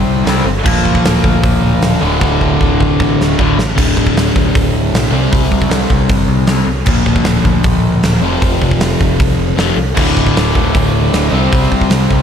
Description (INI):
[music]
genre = hard rock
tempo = 155 BPM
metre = 4/4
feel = straight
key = D minor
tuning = A4 = 439 Hz
[part]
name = crunchy overdriven guitar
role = riff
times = 0.0-12.2 s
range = D2 to C4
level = -16 LUFS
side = left 8 dB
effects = phaser
[part]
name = sludgy distorted guitar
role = riff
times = 0.0-12.2 s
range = D2 to C4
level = -18 LUFS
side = right 10 dB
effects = overdrive
[part]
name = tight distorted guitar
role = riff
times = 0.0-3.6, 9.9-12.2 s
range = D2 to C4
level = -18 LUFS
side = equal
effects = distortion
[part]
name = picked electric bass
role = bass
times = 0.0-12.2 s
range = D1 to D2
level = -18 LUFS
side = equal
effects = none
[part]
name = huge arena drum kit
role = drums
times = 0.3-12.2 s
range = crash cymbal, hi-hat, kick drum, snare drum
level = -15 LUFS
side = right 1 dB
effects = none
[sound]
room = light reverb, studio reverb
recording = none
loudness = -10 LUFS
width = side -8 dB against mid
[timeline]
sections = 0.0-3.8 A section; 3.8-12.2 A section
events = drum fill 2.2-3.8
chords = 0.0 C5; 0.7 Bb/D; 2.0 D5; 5.1 C5; 6.9 Bb/D; 8.2 F5; 10.0 D5; 11.3 C5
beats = 0.27 | 0.66 1.05 1.44 1.82 | 2.21 2.60 2.99 3.38 | 3.77 4.15 4.54 4.93 | 5.32 5.71 6.09 6.48 | 6.87 7.26 7.64 8.03 | 8.42 8.81 9.20 9.58 | 9.97 10.36 10.74 11.13 | 11.52 11.91